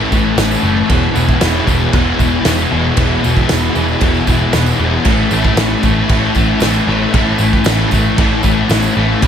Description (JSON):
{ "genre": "rock, shoegaze and dream pop", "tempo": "115 BPM", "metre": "4/4", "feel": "straight", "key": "A major", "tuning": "A4 = 440 Hz", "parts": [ { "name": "distorted electric guitar", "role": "riff", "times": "0.0-9.3 s", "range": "E2 to A3", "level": "-19 LUFS", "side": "right 2 dB", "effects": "distortion" }, { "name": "electric guitar through a small old amp", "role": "riff", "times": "0.0-9.3 s", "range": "E2 to E4", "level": "-23 LUFS", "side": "right 13 dB", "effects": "reverse reverb" }, { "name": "thick fuzz guitar", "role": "riff", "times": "0.0-9.3 s", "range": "E2 to A3", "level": "-16 LUFS", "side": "left 6 dB", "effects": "distortion, ensemble chorus" }, { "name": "vintage muted picked electric bass", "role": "bass", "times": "0.0-9.3 s", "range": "E1 to A1", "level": "-18 LUFS", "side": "right 1 dB", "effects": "none" }, { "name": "loose indie drum kit", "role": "drums", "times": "0.1-9.3 s", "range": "crash cymbal, kick drum, snare drum", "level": "-16 LUFS", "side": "right 1 dB", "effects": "none" }, { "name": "tambourine", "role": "percussion", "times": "0.1-9.3 s", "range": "none", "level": "-31 LUFS", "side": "right 12 dB", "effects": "none" } ], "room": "light reverb, studio ambience", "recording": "none", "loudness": "-11 LUFS", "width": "side -8 dB against mid", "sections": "0.0-9.3 A section", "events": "none", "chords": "0.0 Aadd9; 0.9 E; 5.1 Aadd9", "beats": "0.38 | 0.90 1.42 1.94 2.46 | 2.98 3.50 4.02 4.54 | 5.06 5.58 6.10 6.62 | 7.14 7.66 8.18 8.70 | 9.22" }